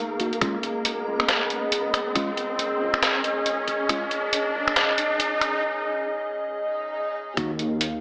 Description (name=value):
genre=deep dubstep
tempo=138 BPM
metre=4/4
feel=swing 60% on 16ths, half-time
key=unclear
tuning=A4 = 438 Hz
part: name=dark analog pad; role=sustained chords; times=0.0-8.0 s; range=Db4 to F5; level=-30 LUFS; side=equal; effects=chorus
part: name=riser and swell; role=sound effects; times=0.0-7.4 s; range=none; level=-32 LUFS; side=equal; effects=none
part: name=flickering grainy texture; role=texture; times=0.0-5.6 s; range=Bb3 to Bb4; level=-40 LUFS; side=equal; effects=built-in reverb
part: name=mellow tine electric piano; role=stabs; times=0.2-4.0, 7.4-7.5 s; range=Ab3 to Gb4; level=-35 LUFS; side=equal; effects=low-pass filter, dub echo
part: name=trip hop sampler-style drum kit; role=drums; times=0.2-7.9 s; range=finger snaps, hi-hat, snare drum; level=-27 LUFS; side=equal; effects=high-pass filter on snare, high-pass filter on hats
part: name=electronic kick drum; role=drums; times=0.4-4.0, 7.4-7.5 s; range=none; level=-40 LUFS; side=equal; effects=none
part: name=dark detuned saw bass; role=bass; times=7.4-8.0 s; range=Eb2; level=-30 LUFS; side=equal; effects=none
room=wet spring reverb, RT60 1.4 s, digital ambience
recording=high-pass filter, AM radio sound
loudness=-25 LUFS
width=mono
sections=0.0-7.4 A section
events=build-up 0.0-7.4; riser 0.0-5.6; filter sweep 0.0-7.4; break 5.6-7.4; swell 6.5-7.4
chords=0.4 Db5; 7.4 Ebm